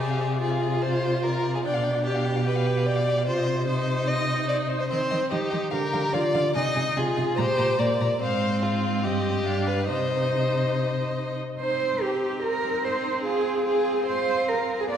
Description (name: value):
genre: quick classical-period movement for string quartet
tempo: 146 BPM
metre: 4/4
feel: rubato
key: C minor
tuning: A4 = 440 Hz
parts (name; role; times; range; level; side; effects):
- rich violin; melody; 0.0-15.0 s; G4 to Bb5; -34 LUFS; left 5 dB; none
- rich violin; second line; 0.0-15.0 s; Eb4 to Eb5; -27 LUFS; left 1 dB; none
- clear viola; accompaniment; 0.0-15.0 s; Bb3 to G4; -30 LUFS; right 2 dB; none
- warm cello; bass; 0.0-15.0 s; G2 to D5; -26 LUFS; right 1 dB; none
room: wet concert hall reverb, RT60 2.0 s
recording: heard from further back in the room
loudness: -22 LUFS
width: side -9 dB against mid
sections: 0.0-11.6 A section; 11.6-15.0 A section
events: none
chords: 0.0 Dm7b5/C; 1.6 G7/B; 3.3 Cm; 4.9 Cm/Eb; 5.7 Bb/D; 6.5 Ab/C; 7.4 Gm/Bb; 8.2 Fm/Ab; 9.0 Cm/G; 9.5 G7; 9.9 Cm; 13.2 Fmadd11/C